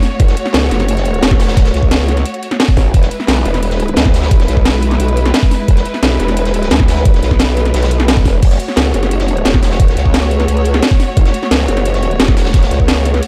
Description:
dark technical drum and bass; 175 BPM; 4/4; straight; F# minor; A4 = 440 Hz
dark studio string section; sustained chords; 0.0-13.3 s; G#3 to C#5; -23 LUFS; equal; sidechain pumping
crunchy breakbeat drum kit; drums; 0.0-13.3 s; hi-hat, snare drum; -29 LUFS; equal; high-pass filter on hats, small room ambience, high-pass filter on snare, high-pass filter on room
drum and bass drum kit; drums; 0.0-13.3 s; crash cymbal, hi-hat, snare drum; -18 LUFS; equal; overdrive, small room ambience
growl bass; bass; 0.2-13.2 s; E1 to D2; -17 LUFS; equal; chorus
electronic kick drum; drums; 0.2-12.9 s; -14 LUFS; equal; small room ambience
small room ambience; dark, warm production; -13 LUFS; mono
0.0-13.3 A section
0.0 F#m; 2.9 E; 8.4 F#m

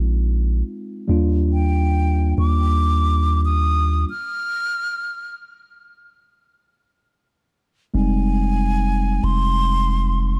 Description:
contemporary R&B; 70 BPM; 4/4; straight; F dorian; A4 = 440 Hz
mellow tine electric piano; accompaniment; 0.0-10.4 s; G3 to F4; -27 LUFS; equal
long sustained 808-style bass; bass; 0.0-10.4 s; F1 to Eb2; -21 LUFS; equal
breathy concert flute; melody; 1.5-10.4 s; G5 to F6; -27 LUFS; equal; tape echo
small room ambience; dark, warm production; -20 LUFS; mono
0.0-7.9 A section; 7.9-10.4 B section
stop 4.5-7.9
0.0 Bb7sus4; 1.1 Ebmaj7; 4.1 N.C.; 7.9 Fm9

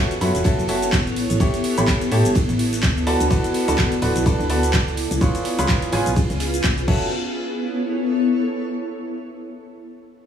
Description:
piano house; 126 BPM; 4/4; swing 57% on 16ths; A4 = 441 Hz
clear baby grand piano; riff; 0.0-7.1 s; E#4 to C#6; -24 LUFS; right 1 dB; sidechain pumping, dub echo
granular cloud pad; texture; 0.0-9.0 s; B3 to D5; -24 LUFS; left 1 dB; built-in reverb, sidechain pumping
house drum kit; drums; 0.1-7.0 s; crash cymbal, handclaps, hi-hat, ride cymbal, shaker; -27 LUFS; equal
solid FM bass; bass; 0.2-7.1 s; D1 to A2; -23 LUFS; equal; sidechain pumping
damped 70s drum kit; drums; 0.2-6.8 s; hi-hat, snare drum; -37 LUFS; right 4 dB
electronic kick drum; drums; 0.5-7.0 s; -20 LUFS; equal
moderate digital room reverb, RT60 1.0 s, studio ambience; studio reverb; -18 LUFS; side -8 dB against mid
0.0-7.1 A section; 7.1-9.0 B section
drop 0.0-7.1
0.0 F#m7; 1.2 A7; 3.1 D6; 5.0 C#7; 6.9 F#m7; 7.1 B9sus4

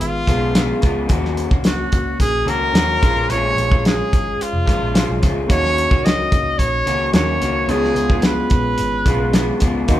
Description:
indie pop, bedroom pop; 109 BPM; 4/4; straight; Eb minor; A4 = 438 Hz
clear trumpet; melody; 0.0-9.6 s; F4 to Eb5; -20 LUFS; right 1 dB
electric guitar through a small old amp; accompaniment; 0.0-10.0 s; Bb2 to Gb4; -22 LUFS; left 2 dB; warbly pitch drift
picked electric bass; bass; 0.0-10.0 s; F1 to Eb2; -24 LUFS; equal
cloth-damped thuddy drum kit; drums; 0.0-10.0 s; hi-hat, kick drum, snare drum; -18 LUFS; equal
barky tine electric piano; accompaniment; 5.5-10.0 s; Bb3 to Db5; -26 LUFS; right 3 dB; overdrive
moderate large studio reverb, RT60 1.0 s; band playing live in one room; -15 LUFS; side -13 dB against mid
0.0-10.0 A section
0.0 Db7; 1.1 Ebm7; 3.0 Bbm7; 5.5 Ebm7; 7.7 Db7

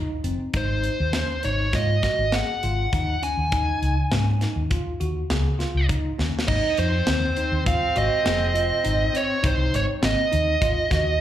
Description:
progressive instrumental, band music in an uneven meter; 101 BPM; 5/4; straight; Ab mixolydian; A4 = 440 Hz
bell-like tine electric piano; arpeggios; 0.0-11.1 s; C4 to Ab4; -31 LUFS; equal; medium stereo tremolo, slapback echo, ping-pong delay
hollow-body short-scale fingered electric bass; bass; 0.2-11.2 s; F1 to Ab2; -24 LUFS; equal
tight metal drum kit; drums; 0.2-11.1 s; crash cymbal, hi-hat, kick drum, snare drum; -27 LUFS; equal
smooth overdriven lead guitar; melody; 0.6-11.2 s; C5 to Ab5; -24 LUFS; right 2 dB; slapback echo
bright trombone; second line; 6.5-11.2 s; C4; -33 LUFS; left 2 dB; slapback echo
light reverb; live gig heard through the venue's PA, club reverb; -20 LUFS; side -11 dB against mid
0.0-6.5 A section; 6.5-11.2 B section
drum fill 6.2
0.0 Ab (rootless); 0.5 Gbsus2/Ab (rootless); 6.5 Ab

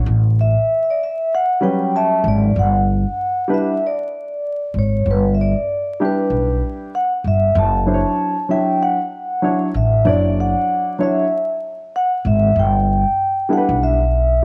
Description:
hip hop, jazz-hop; 96 BPM; 4/4; swing 62% on 16ths; A4 = 437 Hz
upright bass; bass; 0.0-14.4 s; F#1 to B1; -19 LUFS; equal
vibraphone with soft mallets; melody; 0.4-14.4 s; B4 to A5; -21 LUFS; equal; slapback echo
dark grand piano; accompaniment; 1.6-14.0 s; F#3 to E5; -22 LUFS; equal
moderate spring reverb, RT60 1.5 s, small room ambience; vinyl crackle; -18 LUFS; mono
0.0-2.6 A section; 2.6-14.4 B section
vibraphone solo 0.0-2.6
0.1 A13; 2.6 G5; 7.6 Dmaj9/F#; 12.6 G6

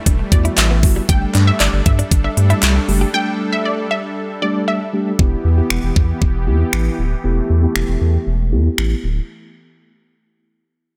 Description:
dance-pop; 117 BPM; 4/4; straight; E minor; A4 = 440 Hz
soft supersaw; sustained chords; 0.0-9.3 s; E3 to A4; -29 LUFS; equal; sidechain pumping, low-pass filter
direct-recorded clean electric guitar; riff; 0.1-3.1 s; G3 to G4; -30 LUFS; equal; analog chorus
saturated sub bass; bass; 0.1-9.2 s; D1 to G2; -18 LUFS; equal; sidechain pumping
pop drum kit; drums; 0.1-8.9 s; finger snaps, handclaps, hi-hat, kick drum; -18 LUFS; equal
unison pluck; melody; 0.3-5.0 s; D5 to G5; -25 LUFS; equal; dub echo
mellow tine electric piano; accompaniment; 0.3-9.1 s; G3 to A4; -25 LUFS; equal; sidechain pumping, low-pass filter
group handclap; percussion; 0.6-2.7 s; -26 LUFS; equal
little or no reverb; -16 LUFS; mono
0.0-5.2 A section; 5.2-9.3 B section
drop 0.0-5.2; break 3.1-5.2; filter sweep 5.2-9.3
0.0 Em; 1.1 Gsus2; 5.2 Em

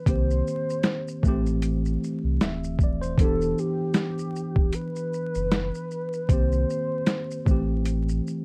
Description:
lo-fi hip hop; 77 BPM; 4/4; swing 57% on 16ths; E minor; A4 = 440 Hz
warbly nostalgic lead; melody; 0.0-7.9 s; G4 to C5; -33 LUFS; equal; chorus
tine electric piano; accompaniment; 0.0-8.4 s; Eb3 to E5; -31 LUFS; equal; cassette tape
sub bass with octave; bass; 0.1-8.2 s; D1 to C2; -29 LUFS; equal
lo-fi sampler-style drum kit; drums; 0.1-8.4 s; hi-hat, kick drum, shaker, snare drum; -26 LUFS; equal; overdrive
light reverb; dark, warm production, vinyl crackle; -25 LUFS; mono
0.0-8.4 A section
0.1 Cm7; 1.2 Am7; 3.2 Em7; 6.3 Cm7; 7.5 Am7

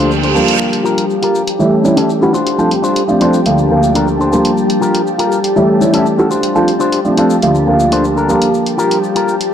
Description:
filtered disco house; 121 BPM; 4/4; straight; G minor; A4 = 440 Hz
dark grand piano; accompaniment; 0.0-9.5 s; D2 to F#4; -13 LUFS; equal; phaser, low-pass filter
string machine, full ensemble; sustained chords; 0.0-9.5 s; G4 to A5; -18 LUFS; equal; ensemble chorus, low-pass filter
electric guitar with an envelope filter; riff; 0.0-9.3 s; C#4 to C5; -18 LUFS; left 2 dB; vintage 12-bit sampler grit, low-pass filter
reverse cymbal; sound effects; 0.0-0.6 s; -18 LUFS; right 6 dB
electronic shaker and hi-hat; drums; 0.1-9.5 s; -25 LUFS; left 1 dB; low-pass filter on perc, low-pass filter on hats, low-pass filter on room
moderate lush hall reverb, RT60 2.1 s; dark, warm production; -10 LUFS; side -9 dB against mid
0.0-9.5 A section
reverse cymbal 0.0-0.6; filter sweep 0.0-9.5
0.0 Dm7; 0.6 Gm7; 1.6 A7; 2.3 Dm7; 4.6 Gm7; 5.6 A7; 6.3 Dm7; 8.5 Gm7

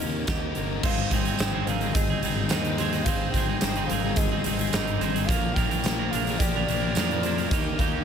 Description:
rock, shoegaze and dream pop; 108 BPM; 4/4; straight; A4 = 440 Hz
hollow clarinet-like synth lead; melody; 0.0-8.0 s; D5 to G5; -35 LUFS; equal; chorus, slapback echo
soft string machine; sustained chords; 0.0-8.0 s; Db3 to Eb6; -39 LUFS; right 1 dB; phaser, ensemble chorus
electric guitar through a small old amp; arpeggios; 0.0-8.0 s; G4 to C5; -38 LUFS; right 2 dB; analog chorus, slapback echo
biting overdriven guitar; riff; 0.0-8.0 s; Bb2 to Bb4; -31 LUFS; right 12 dB; reverse reverb
thick fuzz guitar; riff; 0.0-8.0 s; Ab2 to G4; -30 LUFS; left 9 dB; distortion, wide subtle chorus
fuzz fingered electric bass; bass; 0.0-8.0 s; G1 to F2; -30 LUFS; right 1 dB; overdrive
huge arena drum kit; drums; 0.0-7.9 s; crash cymbal, hi-hat, kick drum, snare drum; -27 LUFS; right 1 dB
tambourine; percussion; 0.3-7.1 s; -38 LUFS; right 13 dB
light reverb, small room ambience; -23 LUFS; side -7 dB against mid
0.8-8.0 A section
0.0 Eb7; 0.8 Abmaj7; 5.3 Bb6; 7.5 Eb

